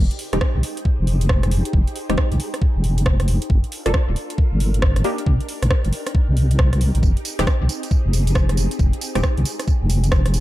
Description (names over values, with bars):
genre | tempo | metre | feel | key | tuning
UK garage, two-step garage | 136 BPM | 4/4 | swing 63% on 16ths | F dorian | A4 = 441 Hz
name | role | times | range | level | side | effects
soft string machine | sustained chords | 0.0-10.4 s | C4 to C5 | -32 LUFS | equal | phaser, ensemble chorus, sidechain pumping
deep soft wobble bass | bass | 0.0-10.4 s | D1 to C2 | -18 LUFS | equal | chorus
garage drum kit | drums | 0.1-10.4 s | hi-hat, rim click, tambourine | -27 LUFS | right 2 dB | overdrive
punchy chord stab | stabs | 0.3-9.2 s | Ab3 to A4 | -25 LUFS | equal | chorus, phaser, ping-pong delay
electronic kick drum | drums | 0.4-10.2 s | none | -18 LUFS | equal | overdrive
room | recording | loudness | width
digital ambience | dark, warm production | -17 LUFS | side -16 dB against mid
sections
0.0-10.4 A section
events
none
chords
0.0 Fm7; 3.5 Gm7; 5.0 Cm7; 7.0 Fm7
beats
0.41 0.85 1.29 | 1.74 2.18 2.62 3.06 | 3.50 3.94 4.38 4.82 | 5.26 5.71 6.15 6.59 | 7.03 7.47 7.91 8.35 | 8.79 9.23 9.68 10.12